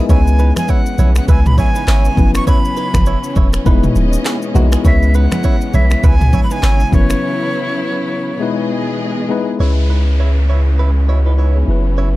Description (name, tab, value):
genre	afrobeats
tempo	101 BPM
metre	4/4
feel	swing 58% on 16ths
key	C# minor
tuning	A4 = 440 Hz
part	tine electric piano	accompaniment	0.0-12.2 s	F#3 to G#5	-20 LUFS	left 6 dB	none
part	direct-recorded clean electric guitar	riff	0.0-12.1 s	A#3 to C#5	-26 LUFS	right 8 dB	tape echo
part	breathy bright jazz flute	melody	0.1-8.7 s	C#5 to C#6	-22 LUFS	right 1 dB	tape echo
part	warm studio string section	sustained chords	0.1-12.2 s	B2 to D#5	-25 LUFS	right 2 dB	sidechain pumping
part	punchy sub bass	bass	0.1-12.2 s	D#1 to C#2	-12 LUFS	equal	none
part	deep house drum kit	drums	0.1-7.2 s	finger snaps, handclaps, kick drum, rim click, shaker, toms	-15 LUFS	equal	none
part	congas	percussion	0.1-7.1 s	none	-21 LUFS	right 2 dB	none
part	downlifter	sound effects	9.6-12.2 s	none	-31 LUFS	equal	none
room	light reverb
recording	dark, warm production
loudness	-12 LUFS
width	side -17 dB against mid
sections	0.0-9.6 A section; 9.6-12.2 B section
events	break 7.2-9.6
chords	0.1 C#m7; 2.2 F#7sus4; 3.7 Emaj7; 4.8 C#m7; 6.9 F#7sus4; 8.4 Emaj7; 9.6 C#m7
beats	| 0.10 0.69 1.28 1.88 | 2.47 3.06 3.66 4.25 | 4.85 5.44 6.04 6.63 | 7.22 7.82 8.41 9.01 | 9.60 10.19 10.79 11.38 | 11.98